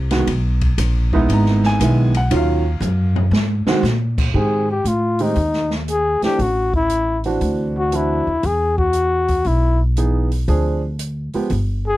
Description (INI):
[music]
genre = jazz, small-group swing and bop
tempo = 118 BPM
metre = 4/4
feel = swing 68% on 8ths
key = unclear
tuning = A4 = 440 Hz
[part]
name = upright bass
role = bass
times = 0.0-12.0 s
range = G1 to Bb2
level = -19 LUFS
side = equal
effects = none
[part]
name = warm concert grand piano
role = accompaniment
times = 0.1-11.5 s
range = Eb3 to Bb5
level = -20 LUFS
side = right 3 dB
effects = none
[part]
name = open jazz drum kit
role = drums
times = 0.1-11.7 s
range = crash cymbal, hi-hat, kick drum, ride cymbal, snare drum, toms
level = -25 LUFS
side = equal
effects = none
[part]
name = breathy trumpet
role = melody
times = 4.4-12.0 s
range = Eb4 to Ab4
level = -18 LUFS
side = left 2 dB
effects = none
[sound]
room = little or no reverb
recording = none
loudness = -16 LUFS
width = side -16 dB against mid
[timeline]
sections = 0.0-4.3 A section; 4.3-12.0 B section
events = drum fill 2.8-3.8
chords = 0.3 Emaj7; 2.3 Ebm9; 3.3 Ab7; 4.3 Abmaj7; 6.4 Am; 7.4 D9; 8.4 Emaj7; 10.5 Dm7b5